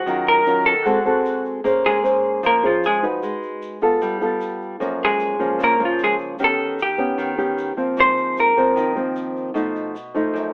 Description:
bossa nova; 152 BPM; 4/4; straight; Bb minor; A4 = 440 Hz
vintage hollow-body jazz guitar; melody; 0.0-8.9 s; F3 to C5; -20 LUFS; equal; plate reverb
nylon-string guitar; accompaniment; 0.0-10.5 s; Gb2 to C5; -24 LUFS; equal
bright flute section; second line; 0.1-1.4 s; Gb4 to Bb4; -29 LUFS; equal
egg shaker; percussion; 0.1-10.5 s; -55 LUFS; equal
moderate studio reverb, RT60 0.7 s; telephone sound; -20 LUFS; mono
0.0-1.6 A section; 1.6-10.5 B section
hollow-body jazz guitar solo 1.6-10.5
0.1 Ebm9; 0.9 Ab7b9; 1.6 Bbm9; 3.2 Abm7; 4.0 G9; 4.8 Gbmaj7; 6.4 Eb7b13; 8.0 Ab69; 9.6 B7#11
| 0.07 0.47 0.86 1.25 | 1.65 2.04 2.44 2.83 | 3.23 3.62 4.02 4.41 | 4.81 5.20 5.60 5.99 | 6.39 6.78 7.18 7.57 | 7.97 8.36 8.76 9.15 | 9.55 9.95 10.34

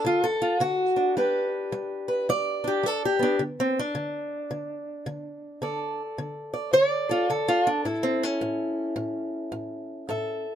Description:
acoustic country blues, solo or duo; 108 BPM; 4/4; swing 63% on 8ths; A4 = 440 Hz
fingerpicked acoustic archtop guitar; solo; 0.0-10.6 s; A2 to E5; -24 LUFS; equal
light reverb; close, detailed microphones; -24 LUFS; side -10 dB against mid
0.0-10.6 A section
0.0 D; 1.2 G; 3.4 D5; 7.9 A
0.05 0.61 | 1.17 1.73 2.29 2.84 | 3.40 3.96 4.51 5.07 | 5.63 6.18 6.74 7.30 | 7.85 8.41 8.96 9.52 | 10.08

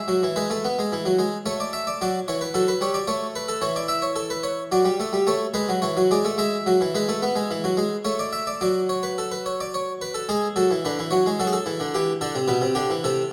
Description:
classical, baroque-style two-part invention for harpsichord; 109 BPM; 3/4; straight; D major; A4 = 441 Hz
harpsichord; solo; 0.0-13.3 s; B2 to E5; -24 LUFS; equal
wet recital hall reverb, RT60 1.8 s; -24 LUFS; mono
0.0-8.6 A section; 8.6-13.3 B section
0.0 E; 1.5 A; 2.0 D; 3.1 A; 3.6 A/E; 4.7 D/F#; 5.3 A; 6.4 E; 8.1 A; 8.6 D/F#; 9.7 F#madd11; 10.3 C#m; 11.4 F#m; 11.9 Em
| 0.38 0.93 1.47 | 2.01 2.56 3.10 | 3.65 4.19 4.74 | 5.29 5.85 6.40 | 6.95 7.51 8.06 | 8.62 9.18 9.74 | 10.29 10.84 11.39 | 11.93 12.48 13.03

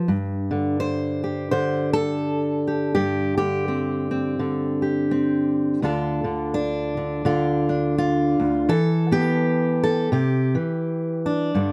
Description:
folk, solo fingerstyle acoustic guitar; 84 BPM; 4/4; swing 60% on 8ths; G mixolydian; A4 = 440 Hz
fingerpicked steel-string acoustic guitar; solo; 0.0-11.7 s; D2 to C5; -23 LUFS; equal
light reverb; -23 LUFS; mono
0.0-11.6 A section
0.1 Gsus4; 5.8 Dm; 8.7 Em; 10.1 C
| 0.08 0.80 1.52 2.24 | 2.96 3.67 4.39 5.11 | 5.83 6.54 7.26 7.98 | 8.69 9.41 10.13 10.84 | 11.56

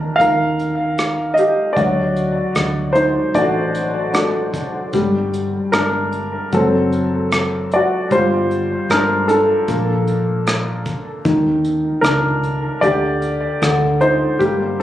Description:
acoustic folk-pop ballad; 76 BPM; 4/4; straight; G minor; A4 = 440 Hz
warm upright piano; melody; 0.0-14.8 s; D3 to F5; -16 LUFS; equal; tape echo
woody fretless electric bass; bass; 0.0-14.8 s; F#1 to Eb2; -24 LUFS; equal
soft brush drum kit; drums; 0.2-14.8 s; hi-hat, kick drum, rim click; -23 LUFS; right 1 dB
light reverb; recorded on a phone in the room, club reverb, compression; -15 LUFS; side -12 dB against mid
0.0-14.8 A section
0.2 Ebadd9; 1.8 D; 4.9 Gm; 6.5 F#dim; 8.1 G5; 9.7 Bb; 11.2 Eb5; 12.8 Dsus4
0.20 0.98 | 1.77 2.56 3.35 4.14 | 4.94 5.73 6.53 7.32 | 8.11 8.89 9.68 10.46 | 11.25 12.04 12.82 13.62 | 14.40

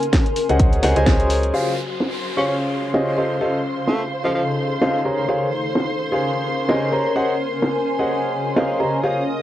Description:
piano house; 128 BPM; 4/4; swing 56% on 16ths; Db major; A4 = 440 Hz
house drum kit; drums; 0.0-9.4 s; hi-hat, snare drum; -22 LUFS; equal; low-pass filter on hats, cassette tape, low-pass filter on snare, low-pass filter on room
granular cloud pad; texture; 0.0-9.4 s; Db3 to C6; -25 LUFS; left 1 dB; built-in reverb, sidechain pumping
electronic kick drum; drums; 0.1-1.2 s; -16 LUFS; equal; cassette tape
clear grand piano; riff; 0.5-9.2 s; Db3 to Bb5; -21 LUFS; equal; sidechain pumping, tape echo
solid FM bass; bass; 0.5-1.5 s; Db2; -20 LUFS; equal; sidechain pumping
warm studio violin section; sustained chords; 1.5-9.4 s; C5 to Eb6; -29 LUFS; right 1 dB; vintage 12-bit sampler grit, sidechain pumping
downlifter; sound effects; 1.5-5.3 s; -34 LUFS; equal
raspy tenor saxophone; melody; 2.4-4.4 s; F3 to Db4; -25 LUFS; equal; cassette tape, tape echo
moderate booth ambience, RT60 0.2 s; home recording on cassette; -18 LUFS; side -13 dB against mid
0.0-1.5 A section; 1.5-9.4 B section
band accent 1.1
0.0 Ab9; 1.5 Dbmaj7; 3.2 F7/Db; 5.0 Bbm9/Db; 7.2 Ab9/Db
0.13 0.60 1.06 | 1.53 2.00 2.47 2.94 | 3.41 3.88 4.35 4.82 | 5.28 5.75 6.22 6.69 | 7.16 7.63 8.10 8.56 | 9.03

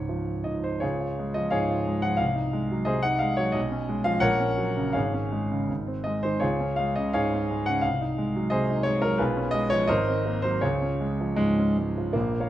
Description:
classical, romantic character piece for solo piano; 77-91 BPM; 2/4; rubato; Db major; A4 = 440 Hz
clear concert grand piano; solo; 0.0-12.5 s; Ab1 to Gb5; -23 LUFS; equal
wet recital hall reverb, RT60 1.5 s; dark, warm production, nothing above 10.5 kHz; -23 LUFS; side -13 dB against mid
0.8-12.1 A section
0.0 Db; 2.2 Ab7/C; 3.6 Db7/Cb; 4.2 Gb/Bb; 5.0 Db/Ab; 5.7 Ab; 6.4 Db; 7.8 Ab7/C; 9.2 Db7/Cb; 9.9 Ab9; 10.6 Db
0.08 | 0.83 1.53 | 2.21 2.88 | 3.56 4.25 | 4.96 5.69 | 6.43 7.15 | 7.84 8.51 | 9.20 9.89 | 10.63 11.39 | 12.15

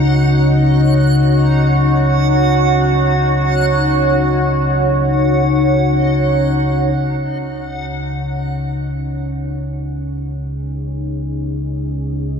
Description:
dark ambient drone; free time; A4 = 438 Hz
deep dark ambient pad; sustained chords; 0.0-12.4 s; C#4 to D#5; -18 LUFS; left 1 dB; chorus, built-in reverb
deep rumbling drone; drone; 0.0-12.4 s; C#2 to C#3; -16 LUFS; equal; built-in reverb
backwards swelling texture; texture; 0.0-7.0 s; D#4 to F#5; -23 LUFS; right 2 dB; built-in reverb
wet cathedral reverb, RT60 5.0 s; cassette tape; -14 LUFS; side -6 dB against mid
0.0-7.0 A section; 7.0-12.4 B section
0.0 C#sus2
free time

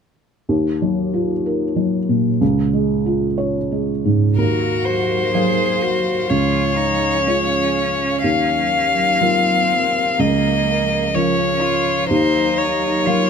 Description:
neoclassical piano and strings; 62 BPM; 4/4; rubato; Eb dorian; A4 = 440 Hz
felt-muted upright piano; accompaniment; 0.5-13.3 s; Db2 to F5; -18 LUFS; right 1 dB
rich violin; melody; 4.4-13.3 s; Bb4 to F5; -18 LUFS; left 3 dB
rich cello; second line; 4.4-13.3 s; Bb3 to Ab4; -24 LUFS; right 2 dB
rich chamber string section; sustained chords; 4.4-13.3 s; F3 to F5; -27 LUFS; right 4 dB
moderate small room ambience, RT60 0.5 s; band playing live in one room; -16 LUFS; side -6 dB against mid
0.5-4.4 A section; 4.4-13.3 B section
0.5 Ebmadd9; 2.4 Db; 4.4 Ebmadd9; 6.3 Db; 8.2 Ebmadd9; 10.2 Bbm/Db; 12.1 Ebmadd9
| 0.49 1.45 2.40 3.37 | 4.37 5.34 6.30 7.27 | 8.23 9.21 10.19 11.14 | 12.10 13.06

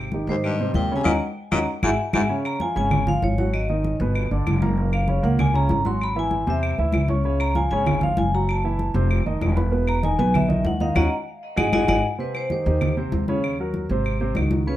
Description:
Afro-Cuban jazz; 194 BPM; 4/4; straight; A4 = 440 Hz
warm upright piano; accompaniment; 0.0-14.8 s; Bb2 to Db6; -26 LUFS; right 2 dB
upright bass; bass; 0.0-14.8 s; Fb1 to Ab2; -23 LUFS; equal
congas; percussion; 0.1-14.8 s; -26 LUFS; left 1 dB
vibraphone with medium hard mallets; melody; 0.3-14.8 s; Cb5 to C6; -26 LUFS; left 2 dB; tape echo
clear baritone saxophone; second line; 0.3-2.2 s; Eb2 to C3; -28 LUFS; left 4 dB
claves; percussion; 0.4-14.5 s; -32 LUFS; equal
moderate studio reverb, RT60 0.7 s; -20 LUFS; side -13 dB against mid
0.0-2.3 A section; 2.3-12.2 B section; 12.2-14.8 C section
band accent 1.1-2.3, 11.0-12.2; drum fill 1.8-2.3; vibraphone solo 12.2-14.8
0.0 Abmaj7; 1.1 Ebm7; 1.7 Eadd9/G#; 2.3 Db; 3.5 Abm7; 4.2 G; 4.8 Gbmaj7; 6.0 Abaug7; 7.2 Db; 8.5 Gbm7; 9.1 F5; 9.7 E5; 11.0 Ebm7; 11.6 Ab5; 12.2 Eb6; 13.4 Ebm7; 14.1 Ab7
0.12 0.43 0.74 | 1.05 1.36 1.68 1.99 | 2.30 2.61 2.92 3.23 | 3.54 3.85 4.16 4.46 | 4.77 5.08 5.39 5.70 | 6.01 6.32 6.63 6.94 | 7.25 7.56 7.87 8.18 | 8.49 8.79 9.10 9.41 | 9.72 10.03 10.34 10.65 | 10.96 11.27 11.58 11.89 | 12.20 12.51 12.81 13.12 | 13.43 13.74 14.05 14.36 | 14.67

